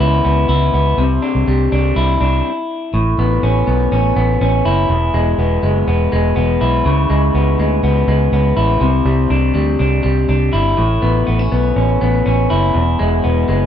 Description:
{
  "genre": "jangly indie pop",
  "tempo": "122 BPM",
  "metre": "4/4",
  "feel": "straight",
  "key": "unclear",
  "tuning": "A4 = 440 Hz",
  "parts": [
    { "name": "electric guitar through a small old amp", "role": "arpeggios", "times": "0.0-13.7 s", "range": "E2 to E4", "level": "-16 LUFS", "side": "left 2 dB", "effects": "none" },
    { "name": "vintage muted fingered electric bass", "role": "bass", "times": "0.0-13.7 s", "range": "E1 to D2", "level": "-15 LUFS", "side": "right 1 dB", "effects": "none" }
  ],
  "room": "moderate small room reverb, RT60 0.5 s",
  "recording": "rough home demo mix",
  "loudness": "-13 LUFS",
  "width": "side -9 dB against mid",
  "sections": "0.0-2.9 A section; 2.9-13.7 B section",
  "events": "stop 2.4-2.9",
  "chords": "0.0 C#m7; 1.0 Cadd9; 2.9 Aadd9; 4.9 E; 6.8 C#m7; 8.8 Cadd9; 10.8 Aadd9; 12.7 E"
}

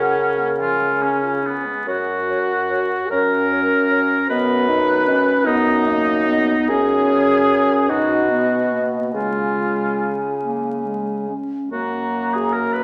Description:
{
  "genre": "classical, slow romantic movement for wind quintet",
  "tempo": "45-52 BPM (dotted quarters)",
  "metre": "6/8",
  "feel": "rubato",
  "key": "F# major",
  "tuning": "A4 = 440 Hz",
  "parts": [
    { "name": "mellow hollow concert flute", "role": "melody", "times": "0.0-12.8 s", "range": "C#5 to A#5", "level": "-28 LUFS", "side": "equal", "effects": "none" },
    { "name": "warm oboe", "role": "second line", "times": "0.0-12.8 s", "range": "B3 to B4", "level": "-24 LUFS", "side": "equal", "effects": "none" },
    { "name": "dark clarinet", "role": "accompaniment", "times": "0.0-12.8 s", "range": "G#3 to A#4", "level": "-25 LUFS", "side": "equal", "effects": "none" },
    { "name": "warm French horn", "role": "accompaniment", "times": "0.0-12.8 s", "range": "E#3 to B4", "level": "-25 LUFS", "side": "equal", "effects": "none" },
    { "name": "mellow bassoon", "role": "bass", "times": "0.0-12.8 s", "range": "F#2 to C#3", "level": "-26 LUFS", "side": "equal", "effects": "none" }
  ],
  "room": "wet recital hall reverb, RT60 1.8 s",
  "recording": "vinyl crackle",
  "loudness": "-19 LUFS",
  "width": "mono",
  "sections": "0.0-1.9 A section; 1.9-12.8 B section",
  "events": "none",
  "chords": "0.0 F#/C#; 0.6 C#; 1.9 F#; 4.3 B/F#; 6.7 F#5; 7.9 B; 9.1 C#; 11.7 F#"
}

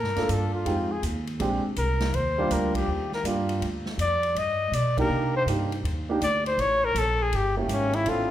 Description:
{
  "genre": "jazz, small-group swing and bop",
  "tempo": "162 BPM",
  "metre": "4/4",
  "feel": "swing 65% on 8ths",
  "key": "unclear",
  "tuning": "A4 = 440 Hz",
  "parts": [
    { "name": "mellow trumpet", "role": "melody", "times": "0.0-8.3 s", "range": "Bb3 to Eb5", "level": "-26 LUFS", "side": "left 2 dB", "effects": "none" },
    { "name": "upright bass", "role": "bass", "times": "0.0-8.3 s", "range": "G1 to C3", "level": "-29 LUFS", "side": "equal", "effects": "none" },
    { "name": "swinging big-band drum kit", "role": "drums", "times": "0.0-8.2 s", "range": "hi-hat, kick drum, ride cymbal, snare drum", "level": "-36 LUFS", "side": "equal", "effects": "none" },
    { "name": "warm grand piano", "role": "accompaniment", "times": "0.2-8.3 s", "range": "G3 to A4", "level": "-29 LUFS", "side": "right 2 dB", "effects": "none" }
  ],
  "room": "moderate recital hall reverb, RT60 1.7 s",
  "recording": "recorded in a church or concert hall",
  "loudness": "-23 LUFS",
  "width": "side -12 dB against mid",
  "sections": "0.0-8.3 A section",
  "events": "band accent 2.7, 4.9",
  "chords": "0.0 Gm9; 0.7 Fm7; 1.4 Bb13; 2.1 Ebmaj9; 3.6 Dm; 4.4 G; 5.1 Cm9; 6.6 A7b9"
}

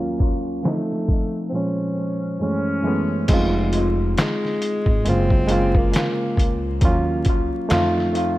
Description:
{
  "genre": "lo-fi hip hop",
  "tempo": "68 BPM",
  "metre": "4/4",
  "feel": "swing 57% on 16ths",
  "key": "unclear",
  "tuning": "A4 = 440 Hz",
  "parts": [
    { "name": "barky reed electric piano", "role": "accompaniment", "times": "0.0-8.4 s", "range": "Eb2 to C5", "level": "-22 LUFS", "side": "right 1 dB", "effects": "tape echo" },
    { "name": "lo-fi sampler-style drum kit", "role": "drums", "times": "0.2-8.4 s", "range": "crash cymbal, handclaps, hi-hat, kick drum, snare drum", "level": "-21 LUFS", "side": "equal", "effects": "none" },
    { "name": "breathy tenor saxophone", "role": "melody", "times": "0.7-6.6 s", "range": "Ab3 to Db4", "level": "-28 LUFS", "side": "left 1 dB", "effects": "tape echo" },
    { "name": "upright bass", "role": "bass", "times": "3.3-8.4 s", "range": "F1 to F2", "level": "-23 LUFS", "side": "equal", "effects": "none" }
  ],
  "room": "light reverb",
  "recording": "echo-heavy mix, vinyl crackle, low-pass filter",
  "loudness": "-18 LUFS",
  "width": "side -16 dB against mid",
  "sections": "0.0-3.3 A section; 3.3-8.4 B section",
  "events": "filter sweep 0.0-3.3",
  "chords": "0.0 Ebm9; 0.6 F7; 1.5 Bbm9; 2.4 Gbm7; 3.3 Fm7; 5.1 Gbmaj7; 6.8 Ebm9; 7.7 F7"
}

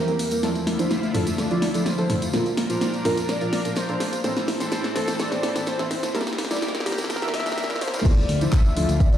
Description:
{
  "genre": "progressive house",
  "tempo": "126 BPM",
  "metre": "4/4",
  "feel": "straight",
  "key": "D minor",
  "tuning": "A4 = 439 Hz",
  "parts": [
    { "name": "warm velvety synth lead", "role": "melody", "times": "0.0-9.2 s", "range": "G4 to E5", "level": "-30 LUFS", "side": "equal", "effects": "chorus, digital delay" },
    { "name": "lush unison pad", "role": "sustained chords", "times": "0.0-9.2 s", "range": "D2 to Bb4", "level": "-32 LUFS", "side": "left 1 dB", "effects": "chorus, sidechain pumping" },
    { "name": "soft round pluck", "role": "arpeggios", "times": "0.0-9.2 s", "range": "A3 to E5", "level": "-30 LUFS", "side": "equal", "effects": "chorus, sidechain pumping, digital delay" },
    { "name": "deep mellow chord stab", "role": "stabs", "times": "0.0-9.2 s", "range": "A2 to E5", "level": "-28 LUFS", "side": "right 2 dB", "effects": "chorus, sidechain pumping, digital delay" },
    { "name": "deep house drum kit", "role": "drums", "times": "0.1-9.2 s", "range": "crash cymbal, handclaps, hi-hat, snare drum", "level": "-27 LUFS", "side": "left 1 dB", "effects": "none" },
    { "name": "tambourine", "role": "percussion", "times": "0.1-9.2 s", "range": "none", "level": "-38 LUFS", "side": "right 1 dB", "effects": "none" },
    { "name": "electronic congas and toms", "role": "percussion", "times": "0.7-7.0 s", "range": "none", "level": "-32 LUFS", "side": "right 2 dB", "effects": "sidechain pumping on perc, sidechain pumping on toms" },
    { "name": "swell", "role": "sound effects", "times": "7.3-8.1 s", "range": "none", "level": "-39 LUFS", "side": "left 1 dB", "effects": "none" },
    { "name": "electronic kick drum", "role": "drums", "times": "8.1-9.1 s", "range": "none", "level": "-18 LUFS", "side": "equal", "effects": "none" },
    { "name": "fat analog bass", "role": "bass", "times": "8.3-9.1 s", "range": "D2", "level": "-22 LUFS", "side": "left 1 dB", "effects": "sidechain pumping" }
  ],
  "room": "moderate digital room reverb, RT60 1.2 s",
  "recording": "played on a big sound system in a bare room, stone room reverb, high-pass filter",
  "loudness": "-21 LUFS",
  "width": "side -10 dB against mid",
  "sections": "0.0-8.1 A section; 8.1-9.2 B section",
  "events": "build-up 0.0-8.1; drum fill 0.0-8.1; filter sweep 0.0-8.1; drop 8.1-9.2",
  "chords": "0.4 Dmadd9; 2.3 Bb; 4.2 Am; 6.1 Edim; 8.1 Dmadd9"
}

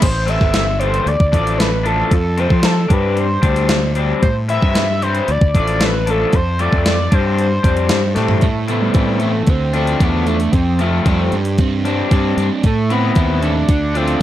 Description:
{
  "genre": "indie rock",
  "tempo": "114 BPM",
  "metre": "4/4",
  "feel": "straight",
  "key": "A minor",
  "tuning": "A4 = 440 Hz",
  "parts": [
    { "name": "overdriven synth lead", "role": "melody", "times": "0.0-14.2 s", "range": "G3 to E5", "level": "-20 LUFS", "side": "equal", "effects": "distortion, slapback echo" },
    { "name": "fuzz fingered electric bass", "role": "bass", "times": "0.0-14.2 s", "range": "G1 to F3", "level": "-19 LUFS", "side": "equal", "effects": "overdrive" },
    { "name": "gated 80s digital drum machine", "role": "drums", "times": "0.0-14.2 s", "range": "crash cymbal, hi-hat, kick drum, snare drum, toms", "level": "-16 LUFS", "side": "equal", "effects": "gated reverb, gated reverb snare, overdrive" },
    { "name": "raw garage guitar", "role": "riff", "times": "0.3-14.2 s", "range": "E3 to E4", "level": "-21 LUFS", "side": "left 5 dB", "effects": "overdrive, spring reverb" },
    { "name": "overdriven electric guitar", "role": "riff", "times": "8.4-14.2 s", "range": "F2 to F4", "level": "-21 LUFS", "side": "right 6 dB", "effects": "analog chorus, slapback echo" }
  ],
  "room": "little or no reverb",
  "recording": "dry, close 1970s-style studio recording",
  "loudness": "-13 LUFS",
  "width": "side -12 dB against mid",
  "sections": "0.0-8.4 A section; 8.4-14.2 B section",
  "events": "drum fill 8.2",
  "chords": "0.0 Am; 1.1 Dm; 2.1 F; 2.9 Gsus4; 4.2 Am; 5.3 Dm; 6.3 F; 7.1 Gsus4; 8.4 Amadd9; 9.5 Dm; 10.5 F; 11.3 Gsus4; 12.6 Amadd9; 13.7 Dm"
}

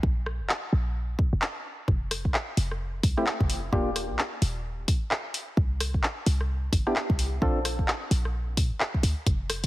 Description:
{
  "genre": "UK garage, two-step garage",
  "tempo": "130 BPM",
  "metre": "4/4",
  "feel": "swing 61% on 16ths",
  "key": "unclear",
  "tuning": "A4 = 445 Hz",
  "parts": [
    { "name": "short 808-style bass", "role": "bass", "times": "0.0-9.7 s", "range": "Eb1 to Bb2", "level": "-27 LUFS", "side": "equal", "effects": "none" },
    { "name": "electronic kick drum", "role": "drums", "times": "0.0-9.7 s", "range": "none", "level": "-26 LUFS", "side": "equal", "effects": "none" },
    { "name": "house drum kit", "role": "drums", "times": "0.3-9.7 s", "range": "handclaps, hi-hat, rim click", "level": "-30 LUFS", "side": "equal", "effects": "none" },
    { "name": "percussive organ stab", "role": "stabs", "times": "3.2-3.9, 6.9-7.6 s", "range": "A3 to A4", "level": "-30 LUFS", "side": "equal", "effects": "chorus, digital delay" }
  ],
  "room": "light reverb, digital ambience",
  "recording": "heavily compressed radio sound",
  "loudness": "-25 LUFS",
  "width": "side -17 dB against mid",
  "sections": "0.0-9.7 A section",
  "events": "none",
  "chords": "0.0 Bb5; 1.9 F5; 3.7 Ebmaj9; 5.6 C5; 7.4 Bbmaj9"
}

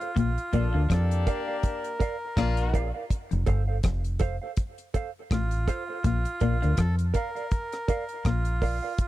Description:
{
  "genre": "roots reggae",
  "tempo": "82 BPM",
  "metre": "4/4",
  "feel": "swing 57% on 16ths",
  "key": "unclear",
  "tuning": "A4 = 441 Hz",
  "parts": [
    { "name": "melodica", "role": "melody", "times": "0.0-9.1 s", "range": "F4 to Bb4", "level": "-34 LUFS", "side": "right 1 dB", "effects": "dub echo" },
    { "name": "mellow electric guitar", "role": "accompaniment", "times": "0.0-8.9 s", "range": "A4 to F5", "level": "-34 LUFS", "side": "right 7 dB", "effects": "lush chorus, dub echo" },
    { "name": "deep reggae drum kit", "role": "drums", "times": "0.0-9.1 s", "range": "hi-hat, kick drum, rim click", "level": "-27 LUFS", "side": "equal", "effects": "none" },
    { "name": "semi-hollow electric guitar", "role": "riff", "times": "0.2-8.5 s", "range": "F2 to F3", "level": "-31 LUFS", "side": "left 6 dB", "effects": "none" },
    { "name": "deep dub fingered electric bass", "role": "bass", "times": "0.2-8.8 s", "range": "F1 to F2", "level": "-25 LUFS", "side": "equal", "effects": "none" },
    { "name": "warm horn section", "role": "second line", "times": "0.5-2.9 s", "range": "Bb3 to A4", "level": "-33 LUFS", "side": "left 5 dB", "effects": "dub echo" }
  ],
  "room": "little or no reverb",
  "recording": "dry, close 1970s-style studio recording",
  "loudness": "-25 LUFS",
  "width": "side -15 dB against mid",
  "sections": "0.0-9.1 A section",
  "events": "none",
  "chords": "0.2 Bb; 3.1 F; 6.0 Bb"
}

